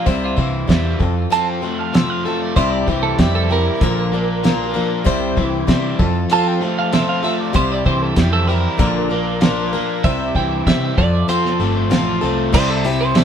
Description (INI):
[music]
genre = folk rock and heartland rock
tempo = 96 BPM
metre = 4/4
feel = straight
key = C mixolydian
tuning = A4 = 442 Hz
[part]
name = twelve-string electric guitar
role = second line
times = 0.0-13.2 s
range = G4 to A5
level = -22 LUFS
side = right 5 dB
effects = digital delay
[part]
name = picked plugged-in swing-style acoustic guitar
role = accompaniment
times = 0.0-13.2 s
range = Bb2 to C5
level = -21 LUFS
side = left 3 dB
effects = none
[part]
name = crunchy overdriven guitar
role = riff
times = 0.0-13.2 s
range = F2 to F4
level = -23 LUFS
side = left 1 dB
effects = none
[part]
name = picked electric bass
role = bass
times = 0.1-13.2 s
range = G1 to C3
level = -22 LUFS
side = equal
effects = none
[part]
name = cloth-damped thuddy drum kit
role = drums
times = 0.1-13.2 s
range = crash cymbal, hi-hat, kick drum, snare drum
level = -17 LUFS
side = right 1 dB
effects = none
[part]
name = dark studio string section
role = sustained chords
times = 2.5-13.2 s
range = Bb3 to C5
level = -30 LUFS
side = equal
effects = none
[part]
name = warm baby grand piano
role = accompaniment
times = 12.5-13.2 s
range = E4 to E5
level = -28 LUFS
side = right 4 dB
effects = none
[sound]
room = moderate studio reverb, RT60 0.7 s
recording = band playing live in one room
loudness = -15 LUFS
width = side -8 dB against mid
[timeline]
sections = 0.0-12.5 A section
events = clean electric guitar solo 0.0-12.5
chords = 0.1 C; 1.0 F; 2.6 C; 3.8 Bb; 5.1 C; 6.0 F; 7.6 C; 8.8 Bb; 10.0 C; 11.0 F; 12.5 C